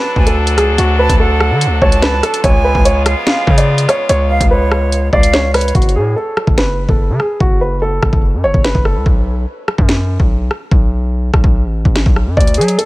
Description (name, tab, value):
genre	hip hop, drill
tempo	145 BPM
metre	4/4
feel	half-time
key	F# harmonic minor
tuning	A4 = 439 Hz
part	dark grand piano	melody	0.0-9.0, 12.4-12.9 s	F#4 to E#5	-16 LUFS	equal	none
part	silver concert flute	second line	0.0-5.7 s	C#5 to A5	-21 LUFS	right 4 dB	digital delay
part	muted French horn section	sustained chords	0.0-5.7 s	C#3 to A4	-21 LUFS	left 2 dB	none
part	distorted 808-style bass	bass	0.2-12.8 s	F#1 to F#3	-15 LUFS	equal	distortion
part	drill drum kit	drums	0.2-12.9 s	hi-hat, kick drum, rim click, snare drum	-14 LUFS	equal	none
room	small room ambience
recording	none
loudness	-11 LUFS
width	side -19 dB against mid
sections	0.0-5.7 A section; 5.7-12.9 B section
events	hi-hats muted 5.7-12.4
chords	0.0 D; 2.4 C#7; 5.7 F#m; 9.1 B5